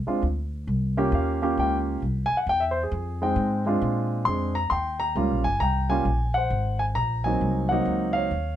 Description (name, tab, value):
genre	jazz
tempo	134 BPM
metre	4/4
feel	swing 66% on 8ths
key	Eb mixolydian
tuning	A4 = 439 Hz
part	upright bass	bass	0.0-8.6 s	G1 to Bb2	-27 LUFS	equal	none
part	warm grand piano	melody	0.1-8.6 s	Gb3 to C6	-24 LUFS	equal	none
room	light reverb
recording	dark, warm production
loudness	-22 LUFS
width	side -11 dB against mid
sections	0.0-4.7 A section; 4.7-8.6 B section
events	grand piano solo 0.0-4.7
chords	0.0 Bbadd9 (rootless); 1.1 Eb9; 2.0 C; 2.9 Fm7; 3.8 Bb9; 4.7 Eb9; 6.5 Ab9